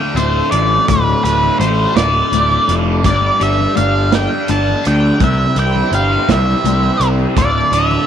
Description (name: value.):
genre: psychedelic rock.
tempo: 56 BPM (dotted quarters).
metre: 6/8.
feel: straight.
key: D dorian.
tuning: A4 = 435 Hz.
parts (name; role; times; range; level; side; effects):
octave-fuzz lead guitar; melody; 0.0-8.1 s; B4 to A5; -16 LUFS; equal; distortion, tape echo.
hand-pumped harmonium; sustained chords; 0.0-8.1 s; E3 to B5; -27 LUFS; right 13 dB; none.
biting overdriven guitar; riff; 0.0-8.1 s; D2 to G4; -19 LUFS; left 1 dB; phaser.
fuzz picked electric bass; bass; 0.1-8.0 s; D1 to D2; -16 LUFS; equal; overdrive.
vintage drum kit; drums; 0.2-7.9 s; hi-hat, kick drum, snare drum; -19 LUFS; right 4 dB; none.
congas; percussion; 0.2-8.1 s; none; -24 LUFS; left 16 dB; none.
room: light reverb, small room ambience.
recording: 1960s-style stereo with parts hard left and right.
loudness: -12 LUFS.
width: side -9 dB against mid.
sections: 0.0-8.1 A section.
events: none.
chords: 0.0 Dm; 3.0 Gsus2; 5.2 Cadd9; 7.4 Dm.